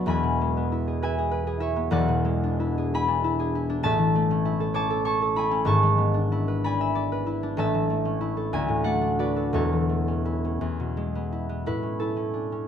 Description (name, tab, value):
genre	classical, solo harp piece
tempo	55-68 BPM (dotted quarters)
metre	6/8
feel	rubato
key	A major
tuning	A4 = 436 Hz
part	concert harp	solo	0.0-12.7 s	E1 to D6	-23 LUFS	left 1 dB	none
room	light reverb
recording	close, detailed microphones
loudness	-23 LUFS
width	side -8 dB against mid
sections	0.0-11.7 A section; 11.7-12.7 B section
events	none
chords	0.1 E; 1.9 E7; 3.9 A; 5.7 E7/G#; 7.6 A; 8.5 D; 9.6 A/E; 10.6 E; 11.7 A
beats	| 0.06 1.00 | 1.91 2.93 | 3.85 4.75 | 5.67 6.63 | 7.58 8.54 | 9.57 10.62 | 11.65